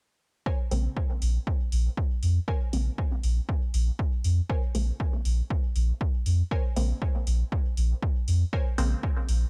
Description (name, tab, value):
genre	dub techno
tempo	119 BPM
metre	4/4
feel	swing 55% on 16ths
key	Bb minor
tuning	A4 = 440 Hz
part	wavetable chord stab	riff	0.5-8.7 s	Bb4 to Ab5	-44 LUFS	equal	sidechain pumping, dub echo
part	electronic kick drum	drums	0.5-9.1 s	none	-30 LUFS	equal	overdrive
part	filtered dub chord stab	stabs	0.7-9.5 s	Db3 to C4	-38 LUFS	equal	phaser, sidechain pumping, dub echo
part	soft dub sub bass	bass	0.7-9.4 s	Bb1 to F2	-26 LUFS	equal	sidechain pumping
part	electronic hi-hat	drums	0.7-9.4 s	none	-43 LUFS	equal	none
room	little or no reverb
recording	echo-heavy mix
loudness	-27 LUFS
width	mono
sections	0.5-9.5 A section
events	none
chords	0.5 Bbm9